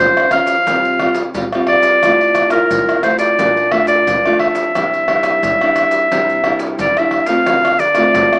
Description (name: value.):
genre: samba and choro.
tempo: 88 BPM.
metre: 4/4.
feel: straight.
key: unclear.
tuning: A4 = 441 Hz.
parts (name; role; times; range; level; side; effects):
clear clarinet; melody; 0.0-8.4 s; Bb4 to F5; -16 LUFS; equal; none.
nylon-string guitar; accompaniment; 0.0-8.4 s; A2 to C5; -21 LUFS; equal; none.
maracas, pandeiro, tamborim and surdo; percussion; 0.2-8.4 s; none; -22 LUFS; equal; none.
room: wet studio reverb, RT60 0.5 s.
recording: rough home demo mix, small speaker sound.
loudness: -14 LUFS.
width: mono.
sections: 0.0-7.5 A section.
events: none.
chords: 0.0 Bbmadd9 (rootless); 0.7 Csus4; 2.0 Fmaj7/C; 3.4 Bbmaj7; 4.8 Cadd9; 7.5 Dm7.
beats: 0.00 0.68 1.36 | 2.04 2.72 3.40 4.08 | 4.75 5.43 6.11 6.79 | 7.47 8.15.